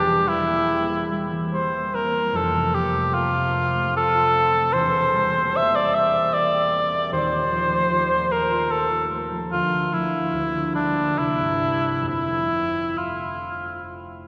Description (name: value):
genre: classical, romantic duo for cor anglais and harp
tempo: 65-77 BPM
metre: 3/4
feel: rubato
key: F major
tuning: A4 = 442 Hz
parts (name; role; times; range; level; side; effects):
- warm cor anglais; melody; 0.0-13.8 s; D4 to E5; -23 LUFS; equal; none
- concert harp; accompaniment; 0.0-14.3 s; Eb1 to C5; -30 LUFS; equal; none
room: wet cathedral reverb, RT60 4.1 s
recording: recorded in a church or concert hall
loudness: -22 LUFS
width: mono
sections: 0.0-14.3 A section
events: none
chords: 0.0 C7/E; 2.3 F; 4.7 C7/E; 7.1 F7/Eb; 9.5 Bb/D; 10.3 Gm7/D; 11.2 C; 12.1 F